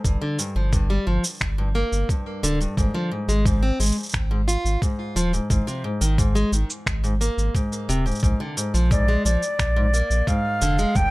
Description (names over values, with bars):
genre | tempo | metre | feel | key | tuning
folktronica | 88 BPM | 4/4 | straight | Bb mixolydian | A4 = 441 Hz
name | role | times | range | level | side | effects
picked plugged-in steel-string acoustic guitar | arpeggios | 0.0-11.1 s | G2 to F4 | -25 LUFS | equal | digital delay
warm sub bass | bass | 0.0-11.1 s | D1 to Bb1 | -22 LUFS | equal | tube saturation
electronic kick drum | drums | 0.0-11.1 s | none | -23 LUFS | equal | small room ambience
electronic shaker and finger snaps | drums | 0.0-11.1 s | none | -28 LUFS | right 1 dB | small room ambience
wooden flute | melody | 8.9-11.1 s | D5 to G5 | -24 LUFS | equal | none
room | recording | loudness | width
light reverb | none | -20 LUFS | side -20 dB against mid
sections
0.0-11.1 A section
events
none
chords
0.0 G5; 2.8 Fm/Ab; 5.5 Ab5; 8.2 Bb7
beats
| 0.05 0.73 1.41 2.09 | 2.77 3.46 4.14 4.82 | 5.50 6.18 6.87 7.55 | 8.23 8.91 9.59 10.27 | 10.96